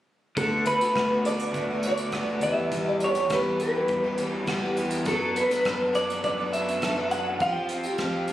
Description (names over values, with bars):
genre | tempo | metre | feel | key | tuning
folk rock and heartland rock | 102 BPM | 4/4 | straight | D major | A4 = 440 Hz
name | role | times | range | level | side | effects
electric guitar through a small old amp | melody | 0.4-8.3 s | A4 to G5 | -26 LUFS | equal | tremolo
picked plugged-in twelve-string acoustic guitar | accompaniment | 0.4-8.3 s | E2 to A4 | -30 LUFS | left 1 dB | none
raw garage guitar | riff | 0.4-8.3 s | E2 to F4 | -31 LUFS | equal | overdrive
fingered electric bass | bass | 0.4-8.3 s | D2 to F#2 | -35 LUFS | equal | none
unplugged drum kit | drums | 0.4-8.3 s | hi-hat, kick drum, rim click | -35 LUFS | right 1 dB | none
room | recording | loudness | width
moderate echo chamber reverb, RT60 1.9 s | recorded on a phone in the room, studio reverb, compression | -23 LUFS | side -13 dB against mid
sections
0.4-8.3 A section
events
none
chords
0.4 D6; 2.4 Em; 5.1 D6/F#; 7.4 Fsus2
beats
| 0.37 0.96 1.55 2.13 | 2.72 3.31 3.90 4.48 | 5.07 5.66 6.24 6.83 | 7.41 8.00